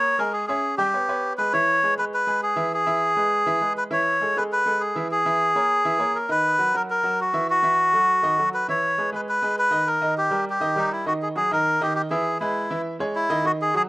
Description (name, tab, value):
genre	latin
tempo	201 BPM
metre	4/4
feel	straight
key	unclear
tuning	A4 = 441 Hz
part	melodica	melody	0.0-13.8 s	D#4 to C#5	-20 LUFS	equal	none
part	clear baby grand piano	accompaniment	0.0-13.9 s	D#3 to G#5	-28 LUFS	right 1 dB	none
room	little or no reverb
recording	recorded outdoors, with no room sound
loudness	-20 LUFS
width	side -22 dB against mid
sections	0.0-1.5 A section; 1.5-11.1 B section; 11.1-13.9 C section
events	none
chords	0.3 C#m; 0.9 G#mmaj7; 1.5 E; 3.9 Amaj7; 5.1 A#m7b5/E; 6.3 Bmaj7; 7.5 F#m7; 8.1 D#dim; 8.7 Emaj7; 9.9 D#; 11.1 G#5; 11.7 D#add11; 12.3 E; 12.8 C#m